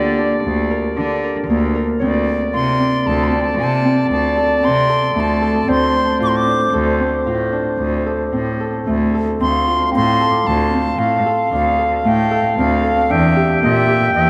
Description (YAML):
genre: contemporary instrumental, chamber music in an uneven meter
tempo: 114 BPM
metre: 7/4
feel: straight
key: D minor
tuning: A4 = 440 Hz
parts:
  - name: mellow clarinet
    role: second line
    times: 0.0-14.3 s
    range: C5 to G5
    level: -23 LUFS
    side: equal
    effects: none
  - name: Celtic harp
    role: arpeggios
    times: 0.0-14.3 s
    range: A3 to Bb4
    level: -22 LUFS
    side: equal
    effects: none
  - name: rich cello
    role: bass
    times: 0.0-14.3 s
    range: D2 to D3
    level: -22 LUFS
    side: equal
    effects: none
  - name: bright reedy wooden flute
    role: melody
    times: 2.5-14.3 s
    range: E5 to D6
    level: -23 LUFS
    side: equal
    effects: none
  - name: worn celesta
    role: texture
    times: 9.9-13.5 s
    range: F5 to D6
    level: -33 LUFS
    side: equal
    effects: none
room: wet cathedral reverb, RT60 6.2 s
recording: in a vast, echoing space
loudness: -17 LUFS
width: mono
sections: 0.0-9.4 A section; 9.4-14.3 B section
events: none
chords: 0.0 Gm7/D; 2.0 Dm7; 13.1 Em7b5